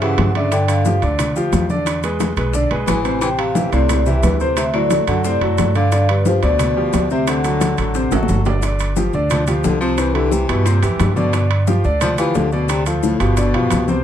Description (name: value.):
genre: Afro-Cuban jazz.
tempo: 177 BPM.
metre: 4/4.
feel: straight.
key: G mixolydian.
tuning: A4 = 440 Hz.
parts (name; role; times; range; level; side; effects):
vibraphone with soft mallets; melody; 0.0-8.3 s; B4 to G#5; -22 LUFS; equal; plate reverb.
warm baritone saxophone; second line; 0.0-14.0 s; D2 to F3; -22 LUFS; left 4 dB; none.
clear concert grand piano; accompaniment; 0.0-14.0 s; C3 to D5; -21 LUFS; equal; none.
upright bass; bass; 0.0-14.0 s; G1 to G2; -19 LUFS; right 1 dB; none.
congas; percussion; 0.0-14.0 s; none; -25 LUFS; left 2 dB; none.
timbales; percussion; 0.0-13.9 s; none; -26 LUFS; right 6 dB; none.
bongos; percussion; 0.2-14.0 s; none; -27 LUFS; left 6 dB; none.
maracas; percussion; 0.5-14.0 s; none; -34 LUFS; left 7 dB; none.
room: light reverb.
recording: dark, warm production.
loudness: -15 LUFS.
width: side -10 dB against mid.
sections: 0.0-8.6 A section; 8.6-14.0 B section.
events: drum fill 8.1-8.6; baritone saxophone solo 8.6-14.0.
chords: 0.0 C#dim; 0.5 G5; 1.9 E7; 3.2 Am7; 4.6 D7; 5.9 G7; 7.3 D7; 8.6 G5; 10.0 C; 11.3 G5; 12.7 Dm; 13.4 G7.